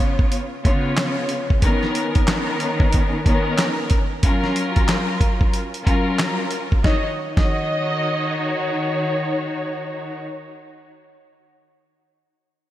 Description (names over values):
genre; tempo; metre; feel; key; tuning
hip hop, boom-bap hip-hop; 92 BPM; 4/4; swing 62% on 16ths; Eb minor; A4 = 440 Hz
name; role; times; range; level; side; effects
rich studio string section; accompaniment; 0.0-10.2 s; Db3 to Db5; -22 LUFS; left 1 dB; cassette tape, high-pass filter, low-pass filter
dusty soul sampler-style drum kit; drums; 0.2-7.5 s; handclaps, hi-hat, kick drum, snare drum; -19 LUFS; equal; none
warm studio violin section; melody; 6.8-8.8 s; Eb5; -26 LUFS; right 1 dB; high-pass filter, low-pass filter, digital delay
room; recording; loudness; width
moderate lush hall reverb, RT60 2.7 s; bright 1980s-style digital production; -18 LUFS; side -13 dB against mid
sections
0.0-6.8 A section; 6.8-9.5 B section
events
break 0.0-1.6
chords
0.0 Db7; 1.6 Bmaj7/D#; 4.2 Gbmaj7; 6.8 Ebm7